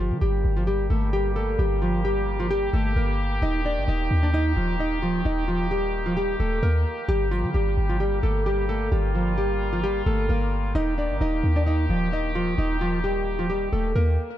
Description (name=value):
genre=hip hop, trap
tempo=131 BPM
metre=4/4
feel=half-time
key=G minor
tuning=A4 = 442 Hz
part: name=nylon-string guitar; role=melody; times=0.0-14.4 s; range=F3 to Eb5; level=-26 LUFS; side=equal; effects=ping-pong delay
part: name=warm brass ensemble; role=sustained chords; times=0.0-14.2 s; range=Eb3 to G4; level=-31 LUFS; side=equal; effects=none
part: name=warm 808-style bass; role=bass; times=0.0-14.2 s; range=Eb1 to D3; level=-24 LUFS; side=equal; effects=none
room=studio reverb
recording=none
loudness=-22 LUFS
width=side -12 dB against mid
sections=0.0-14.4 A section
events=none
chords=0.0 Gmadd9; 3.4 Eb; 7.1 Gmadd9; 10.7 Eb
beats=0.21 0.67 1.13 | 1.59 2.05 2.50 2.96 | 3.42 3.88 4.34 4.79 | 5.25 5.71 6.17 6.63 | 7.08 7.54 8.00 8.46 | 8.92 9.38 9.83 10.29 | 10.75 11.21 11.66 12.12 | 12.58 13.04 13.50 13.96